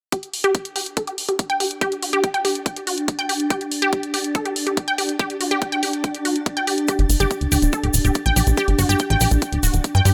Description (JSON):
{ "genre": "psychedelic trance", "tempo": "142 BPM", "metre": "4/4", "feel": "straight", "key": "G harmonic minor", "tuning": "A4 = 441 Hz", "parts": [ { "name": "swarming drone", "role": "sustained chords", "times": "1.7-10.1 s", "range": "D4", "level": "-29 LUFS", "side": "equal", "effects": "built-in reverb, sidechain pumping" }, { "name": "unison pluck", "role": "riff", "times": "0.1-10.1 s", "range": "F#4 to G5", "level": "-25 LUFS", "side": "equal", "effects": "sidechain pumping, tape echo" }, { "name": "electronic hi-hat", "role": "drums", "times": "0.1-10.1 s", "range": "none", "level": "-29 LUFS", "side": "equal", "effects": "none" }, { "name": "electronic kick drum", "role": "drums", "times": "0.1-9.9 s", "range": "none", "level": "-26 LUFS", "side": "equal", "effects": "high-pass filter on kick" }, { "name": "tube shaker", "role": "percussion", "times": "6.9-10.1 s", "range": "none", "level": "-28 LUFS", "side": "equal", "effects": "none" }, { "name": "plucky analog bass", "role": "bass", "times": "7.0-10.1 s", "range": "D1 to G2", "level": "-20 LUFS", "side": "equal", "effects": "tube saturation" } ], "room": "light reverb, digital ambience", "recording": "none", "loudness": "-21 LUFS", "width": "mono", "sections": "0.1-10.1 A section", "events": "filter sweep on synth arpeggio sound 0.1-10.1", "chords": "0.1 G5" }